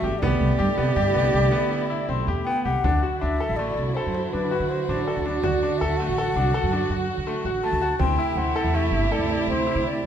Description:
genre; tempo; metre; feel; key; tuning
contemporary instrumental, chamber music in an uneven meter; 162 BPM; 7/4; straight; D mixolydian; A4 = 442 Hz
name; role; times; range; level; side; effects
breathy mellow concert flute; melody; 0.0-10.1 s; B4 to A5; -27 LUFS; left 2 dB; none
dark cello; second line; 0.0-10.1 s; E4 to G4; -28 LUFS; right 6 dB; none
muted chamber string section; sustained chords; 0.0-10.1 s; C3 to G4; -31 LUFS; left 1 dB; none
bright grand piano; arpeggios; 0.0-10.0 s; A3 to A4; -28 LUFS; left 3 dB; none
upright bass; bass; 0.0-9.9 s; G1 to D3; -26 LUFS; right 1 dB; none
frame drum; percussion; 0.0-9.8 s; none; -33 LUFS; right 4 dB; none
room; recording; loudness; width
moderate recital hall reverb, RT60 1.5 s; minimal, uncompressed stereo recording; -21 LUFS; side -9 dB against mid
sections
0.0-2.8 A section; 2.8-10.1 B section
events
none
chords
0.2 Cmaj9; 2.8 Dadd9; 8.0 Am7

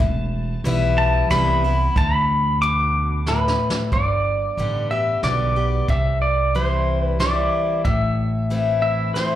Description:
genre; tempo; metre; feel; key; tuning
honky-tonk and classic country; 92 BPM; 3/4; straight; G major; A4 = 442 Hz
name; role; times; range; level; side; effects
pedal steel guitar; melody; 0.0-9.4 s; B4 to D6; -22 LUFS; right 1 dB; plate reverb, slapback echo
picked steel-string acoustic guitar; accompaniment; 0.0-9.4 s; E2 to G4; -24 LUFS; left 4 dB; plate reverb, slapback echo
upright bass; bass; 0.0-9.4 s; E1 to D2; -22 LUFS; right 1 dB; none
vintage brush drum kit; drums; 0.0-9.3 s; hi-hat, kick drum, snare drum; -24 LUFS; right 1 dB; none
room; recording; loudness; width
light reverb; live gig heard through the venue's PA, club reverb; -18 LUFS; side -12 dB against mid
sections
0.0-3.9 A section; 3.9-9.4 B section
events
pedal steel guitar solo 0.0-3.9; drum fill 3.3-3.9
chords
0.0 Em; 2.0 D5; 3.9 G; 5.9 C; 7.8 Am

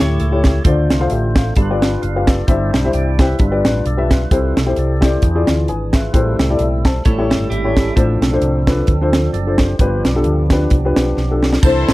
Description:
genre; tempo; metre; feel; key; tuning
uptempo gospel; 131 BPM; 4/4; swing 56% on 8ths; unclear; A4 = 444 Hz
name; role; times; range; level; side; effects
clean electric guitar; second line; 0.0-0.6, 7.1-7.9 s; E4 to C#5; -26 LUFS; right 6 dB; spring reverb
dark upright piano; accompaniment; 0.0-11.9 s; G2 to A5; -18 LUFS; left 2 dB; none
percussive tonewheel organ; sustained chords; 0.0-11.9 s; E3 to G5; -25 LUFS; right 3 dB; slow rotary speaker, overdrive
fingered electric bass; bass; 0.0-11.9 s; F#1 to E2; -18 LUFS; equal; none
crisp fusion drum kit; drums; 0.0-11.9 s; crash cymbal, hi-hat, kick drum, ride cymbal, snare drum; -15 LUFS; equal; none
muted studio string section; melody; 11.6-11.9 s; E4 to C5; -17 LUFS; left 4 dB; none
tambourine; percussion; 11.6-11.9 s; none; -32 LUFS; right 14 dB; none
room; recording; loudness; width
little or no reverb; dry, close 1970s-style studio recording; -13 LUFS; side -18 dB against mid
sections
0.0-11.6 A section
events
drum fill 11.2-11.6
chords
0.0 A7; 0.6 Dm7; 1.6 G7; 2.5 C/G; 3.4 G7; 4.3 C6; 5.2 E7b9; 6.1 Am7; 7.0 A7; 8.0 Dm7/A; 9.8 G7

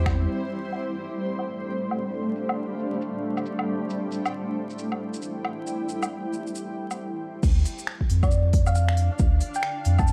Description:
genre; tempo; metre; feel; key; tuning
future garage; 136 BPM; 4/4; swing 62% on 16ths; D minor; A4 = 440 Hz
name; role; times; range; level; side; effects
granular cloud pad; sustained chords; 0.0-10.1 s; G3 to G5; -33 LUFS; equal; built-in reverb, sidechain pumping
soft dub sub bass; bass; 0.0-0.3, 7.4-10.1 s; D2 to F2; -23 LUFS; equal; none
backwards swelling texture; texture; 0.0-7.0 s; G3 to G4; -38 LUFS; equal; built-in reverb
deep house drum kit; drums; 0.1-10.1 s; crash cymbal, finger snaps, hi-hat, shaker, woodblock; -35 LUFS; equal; low-pass filter on perc, studio reverb, low-pass filter on snare, low-pass filter on cymbals, low-pass filter on hats
electronic kick drum; drums; 0.1, 7.4-10.1 s; none; -25 LUFS; equal; studio reverb
thumb-piano-like synth pluck; melody; 8.2-10.1 s; D5 to A5; -32 LUFS; equal; chorus, tape echo
room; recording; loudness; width
light reverb; vinyl crackle; -26 LUFS; mono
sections
0.4-7.4 A section; 7.4-10.1 B section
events
filter sweep on drum 0.4-7.4; filter sweep on ambient pad 0.4-7.4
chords
0.4 Dm7; 3.9 Am7; 7.4 Dm

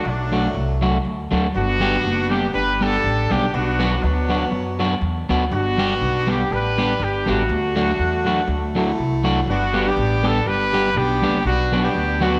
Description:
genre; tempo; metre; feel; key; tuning
ska; 121 BPM; 4/4; swing 55% on 8ths; G major; A4 = 441 Hz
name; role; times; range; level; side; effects
warm horn section; melody; 0.0-12.4 s; F#3 to B4; -24 LUFS; equal; none
upright bass; bass; 0.1-12.4 s; F#1 to F#2; -26 LUFS; equal; none
electric guitar at the edge of break-up; accompaniment; 0.3-12.4 s; F#3 to G4; -25 LUFS; equal; spring reverb, slapback echo
room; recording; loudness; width
moderate echo chamber reverb, RT60 1.6 s, studio reverb; none; -20 LUFS; mono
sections
0.0-9.5 A section; 9.5-12.4 B section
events
none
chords
0.0 D; 1.5 G; 3.5 Bm; 5.5 G; 7.5 D; 9.5 G; 11.5 Bm

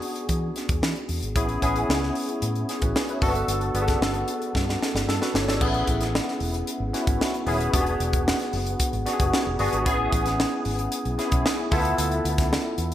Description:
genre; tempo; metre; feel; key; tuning
polished 1980s jazz-funk pop; 113 BPM; 4/4; straight; A major; A4 = 440 Hz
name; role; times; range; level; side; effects
barky tine electric piano; accompaniment; 0.0-12.9 s; Bb3 to E5; -26 LUFS; left 1 dB; overdrive, ensemble chorus
crisp fusion drum kit; drums; 0.0-12.9 s; crash cymbal, hi-hat, kick drum, snare drum; -26 LUFS; equal; gated reverb
vintage muted fingered electric bass; bass; 0.3-12.9 s; D#1 to E3; -28 LUFS; equal; none
room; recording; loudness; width
moderate plate reverb, RT60 2.5 s; bright 1980s-style digital production; -22 LUFS; side -12 dB against mid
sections
0.0-5.6 A section; 5.6-12.9 B section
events
drum fill 4.5-5.6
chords
0.0 E7; 1.4 Amaj7; 3.2 Gmaj7; 5.6 Amaj9; 7.7 E9; 9.9 Amaj9; 11.7 Dm6

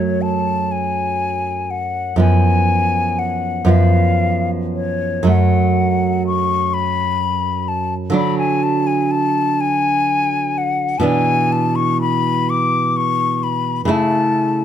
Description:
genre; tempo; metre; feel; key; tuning
romantic duo for flute and classical guitar; 36-43 BPM (dotted quarters); 6/8; rubato; F# minor; A4 = 436 Hz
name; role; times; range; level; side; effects
mellow hollow silver concert flute; melody; 0.0-14.6 s; C#5 to D6; -19 LUFS; left 5 dB; none
nylon-string guitar; accompaniment; 0.0-14.6 s; F#2 to E4; -17 LUFS; right 2 dB; none
room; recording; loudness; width
light reverb; close, detailed microphones; -15 LUFS; side -9 dB against mid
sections
0.0-14.6 A section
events
none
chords
0.0 F#m; 2.2 C#add11/F# (rootless); 5.3 F#m; 8.2 D; 11.1 E5/B; 13.9 A/C#

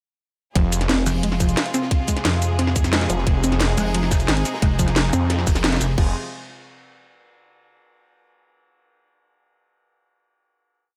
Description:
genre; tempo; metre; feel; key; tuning
dark technical drum and bass; 177 BPM; 4/4; straight; F minor; A4 = 440 Hz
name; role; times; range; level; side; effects
rich symphonic string section; sustained chords; 0.6-6.1 s; C3 to Ab4; -31 LUFS; equal; sidechain pumping
warbly dusty pluck; arpeggios; 0.6-6.1 s; F3 to C4; -28 LUFS; equal; chorus, sidechain pumping, tape echo
snarling distorted saw bass; bass; 0.6-1.1, 3.1-6.1 s; F1 to F2; -24 LUFS; equal; distortion, overdrive
crunchy breakbeat drum kit; drums; 0.6-6.0 s; hi-hat, ride cymbal, snare drum; -37 LUFS; equal; none
drum and bass drum kit; drums; 0.6-6.0 s; crash cymbal, hi-hat, shaker, snare drum; -26 LUFS; equal; none
electronic kick drum; drums; 0.6-6.0 s; none; -22 LUFS; equal; none
pulsing pluck wobble bass; bass; 1.1-6.0 s; F1 to F2; -24 LUFS; equal; chorus
room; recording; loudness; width
light reverb, studio reverb; none; -20 LUFS; mono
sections
0.6-6.0 drop; 6.0-7.3 final chord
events
drop 0.6-6.0; band accent 5.6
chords
0.6 Fm

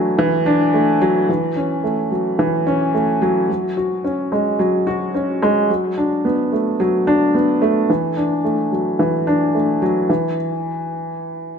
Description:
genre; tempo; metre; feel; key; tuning
electronica; 109 BPM; 4/4; straight; F# minor; A4 = 440 Hz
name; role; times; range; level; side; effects
dark upright piano; solo; 0.0-11.6 s; E3 to F#4; -16 LUFS; equal; none
room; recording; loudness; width
moderate echo chamber reverb, RT60 2.0 s; none; -16 LUFS; side -6 dB against mid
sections
0.0-1.3 A section; 1.3-10.1 B section; 10.1-11.6 C section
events
drop 0.0-1.3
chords
none

